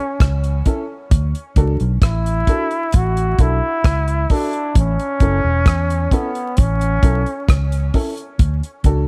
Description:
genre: roots reggae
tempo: 66 BPM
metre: 4/4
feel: straight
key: A major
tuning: A4 = 442 Hz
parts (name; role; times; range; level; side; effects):
- bright trombone; melody; 0.0-8.0 s; B3 to F#4; -25 LUFS; equal; dub echo
- vintage muted fingered electric bass; bass; 0.2-9.1 s; E1 to E2; -20 LUFS; equal; none
- damped 70s drum kit; drums; 0.2-9.1 s; hi-hat, kick drum, rim click; -17 LUFS; equal; none
- dark upright piano; stabs; 0.7-9.0 s; C#4 to A4; -26 LUFS; equal; none
room: small room ambience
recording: vinyl crackle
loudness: -18 LUFS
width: mono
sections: 0.0-9.1 A section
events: none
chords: 0.0 A; 1.1 D; 4.8 A; 8.4 D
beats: 0.20 | 1.11 2.02 2.93 3.85 | 4.75 5.67 6.58 7.49 | 8.39

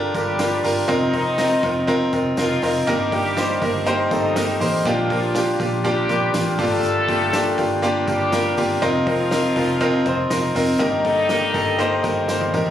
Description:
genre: piano-driven pop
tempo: 121 BPM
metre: 4/4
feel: straight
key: unclear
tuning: A4 = 441 Hz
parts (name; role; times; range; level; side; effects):
- clear grand piano; accompaniment; 0.0-12.7 s; G2 to C5; -19 LUFS; equal; none
- vintage muted fingered electric bass; bass; 0.0-12.7 s; F1 to Bb1; -28 LUFS; equal; none
- muted French horn section; second line; 0.1-12.5 s; Eb3 to A4; -24 LUFS; left 3 dB; none
- natural country drum kit; drums; 0.1-12.7 s; hi-hat, kick drum, snare drum, toms; -30 LUFS; equal; none
- tambourine; percussion; 0.1-12.7 s; none; -39 LUFS; left 3 dB; none
room: light reverb, small room ambience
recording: recorded on a phone in the room, club reverb, compression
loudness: -17 LUFS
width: side -10 dB against mid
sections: 0.0-12.7 A section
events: drum fill 12.3-12.7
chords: 0.0 Gm7; 0.9 F7sus4; 2.9 Eb/G; 4.9 Bb6; 6.6 Gm7; 8.8 F7sus4; 10.8 Eb/G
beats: 0.39 | 0.89 1.38 1.88 2.38 | 2.87 3.37 3.86 4.36 | 4.85 5.35 5.84 6.34 | 6.84 7.33 7.83 8.32 | 8.82 9.31 9.81 10.31 | 10.80 11.30 11.79 12.29

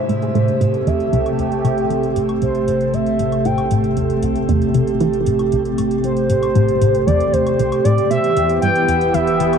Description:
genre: ambient, sequencer-driven space music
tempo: 116 BPM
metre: 4/4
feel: straight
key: A minor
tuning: A4 = 441 Hz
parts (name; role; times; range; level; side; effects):
- expressive synth lead; melody; 0.0-9.6 s; C5 to G5; -21 LUFS; left 2 dB; chorus, shimmer reverb, ping-pong delay
- sweeping resonant pad; sustained chords; 0.0-9.6 s; C3 to G4; -18 LUFS; right 2 dB; chorus, shimmer reverb
- round analog bass; bass; 0.0-9.6 s; E1 to A1; -35 LUFS; equal; tube saturation
- tight sequenced synth; riff; 0.1-9.6 s; C2 to E3; -20 LUFS; left 1 dB; chorus, ping-pong delay
- electronic hi-hat and woodblock; percussion; 0.1-9.6 s; none; -38 LUFS; left 4 dB; ping-pong delay
room: moderate plate reverb, RT60 2.7 s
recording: none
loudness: -15 LUFS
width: side -7 dB against mid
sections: 0.0-9.6 A section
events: fade-in on analog synth bass 0.0-9.6; fade-in on drum 0.0-9.6; filter sweep on synth arpeggio sound 0.0-9.6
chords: 0.0 Am7; 8.1 Em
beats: 0.35 0.87 1.39 | 1.90 2.42 2.94 3.45 | 3.97 4.49 5.00 5.52 | 6.04 6.56 7.07 7.59 | 8.11 8.63 9.14

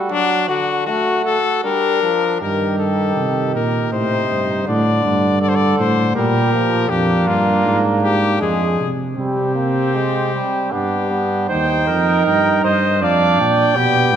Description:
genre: classical, imitative canzona for brass ensemble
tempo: 79 BPM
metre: 3/4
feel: straight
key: unclear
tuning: A4 = 440 Hz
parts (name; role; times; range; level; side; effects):
- mellow trumpet; second line; 0.0-14.2 s; C4 to D5; -22 LUFS; right 5 dB; none
- clear trombone; accompaniment; 0.0-14.2 s; C3 to Eb4; -21 LUFS; right 2 dB; none
- clear trumpet; melody; 0.1-14.2 s; D4 to G5; -20 LUFS; left 7 dB; none
- mellow tuba; bass; 2.4-14.2 s; Eb2 to C3; -19 LUFS; right 1 dB; none
room: wet concert hall reverb, RT60 2.3 s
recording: none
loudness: -15 LUFS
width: side -9 dB against mid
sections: 0.0-2.4 A section; 2.4-11.5 B section; 11.5-14.2 A section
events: none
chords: 0.1 D; 1.6 Gm; 2.4 Eb/G; 3.9 Adim; 4.7 D5; 6.2 Gm/Bb; 6.9 Ddim/F; 9.2 Gsus4/C; 10.7 G; 11.5 Cm/Eb; 13.0 Bb6/F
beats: | 0.11 0.88 1.65 | 2.41 3.17 3.93 | 4.68 5.42 6.16 | 6.90 7.64 8.39 | 9.17 9.95 10.72 | 11.50 12.26 13.02 | 13.76

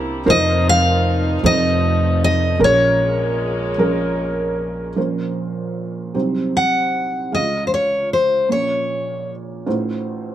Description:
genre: acoustic folk-pop ballad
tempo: 51 BPM (dotted quarters)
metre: 6/8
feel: straight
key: Bb minor, Bb harmonic minor from 5.0 s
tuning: A4 = 441 Hz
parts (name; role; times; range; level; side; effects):
- picked steel-string acoustic guitar; melody; 0.0-9.3 s; C5 to Bb5; -18 LUFS; left 1 dB; none
- felt-muted upright piano; accompaniment; 0.0-10.3 s; F1 to F5; -21 LUFS; right 2 dB; none
- warm chamber string section; sustained chords; 0.0-5.0 s; C3 to E4; -27 LUFS; left 1 dB; none
- upright bass; bass; 0.0-4.9 s; Bb1 to F2; -21 LUFS; left 1 dB; none
room: moderate small room reverb, RT60 0.5 s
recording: none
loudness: -16 LUFS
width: side -11 dB against mid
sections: 0.0-5.0 A section; 5.0-10.3 B section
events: none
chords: 0.3 F7sus4; 1.4 F7; 2.6 Bbm7; 5.0 Bbmadd9; 6.1 Cdim; 7.3 Db; 8.5 Bbm; 9.7 F7/A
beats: | 0.28 1.44 | 2.60 3.78 | 4.96 6.15 | 7.32 8.49 | 9.66

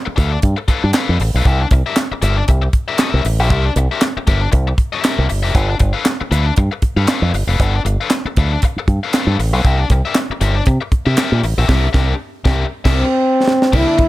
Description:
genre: funk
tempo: 117 BPM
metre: 4/4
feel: swing 56% on 16ths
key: unclear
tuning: A4 = 440 Hz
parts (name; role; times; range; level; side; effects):
- biting overdriven guitar; accompaniment; 0.1-14.0 s; D4 to F5; -21 LUFS; left 6 dB; none
- fingered electric bass with an envelope filter; bass; 0.1-14.0 s; F1 to C3; -16 LUFS; equal; none
- tight funk drum kit; drums; 0.2-14.1 s; crash cymbal, handclaps, hi-hat, kick drum, snare drum; -17 LUFS; equal; none
- breathy trombone; melody; 13.0-14.1 s; C4 to E4; -13 LUFS; equal; none
- clear studio string section; sustained chords; 13.7-14.1 s; D3 to E4; -24 LUFS; right 1 dB; none
room: small room reverb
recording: none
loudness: -13 LUFS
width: side -17 dB against mid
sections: 0.0-13.7 A section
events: band accent 11.7-13.7; drum fill 12.7-13.7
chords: 0.0 G9; 1.5 C9; 5.6 G9; 9.6 C9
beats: 0.43 0.94 | 1.45 1.97 2.48 2.99 | 3.50 4.02 4.53 5.04 | 5.55 6.07 6.58 7.09 | 7.60 8.11 8.62 9.14 | 9.65 10.16 10.67 11.18 | 11.69 12.20 12.71 13.22 | 13.74

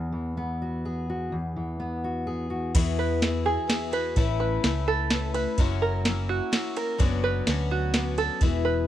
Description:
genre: indie folk with a building arrangement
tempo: 127 BPM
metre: 3/4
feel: straight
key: unclear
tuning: A4 = 438 Hz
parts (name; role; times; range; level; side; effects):
- fingerpicked steel-string acoustic guitar; accompaniment; 0.0-4.2 s; E2 to G#4; -30 LUFS; left 1 dB; none
- picked twelve-string acoustic guitar; accompaniment; 2.7-8.9 s; F#2 to B4; -30 LUFS; left 8 dB; none
- soft vintage rhythm box; drums; 2.7-8.5 s; crash cymbal, kick drum, ride cymbal, snare drum; -25 LUFS; right 1 dB; none
- hollow-body short-scale picked electric bass; bass; 2.8-8.9 s; E1 to E2; -28 LUFS; equal; none
- open-back banjo; arpeggios; 3.0-8.9 s; F#4 to B4; -28 LUFS; right 5 dB; none
room: small room ambience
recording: dry, close 1970s-style studio recording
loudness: -24 LUFS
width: side -12 dB against mid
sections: 0.0-2.8 A section; 2.8-8.9 B section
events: none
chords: 0.0 Eadd9; 4.2 Aadd9; 5.6 F#7; 7.0 Bmadd9/F#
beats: 0.39 0.86 | 1.33 1.81 2.28 | 2.75 3.23 3.70 | 4.17 4.64 5.11 | 5.58 6.06 6.53 | 7.00 7.47 7.94 | 8.41

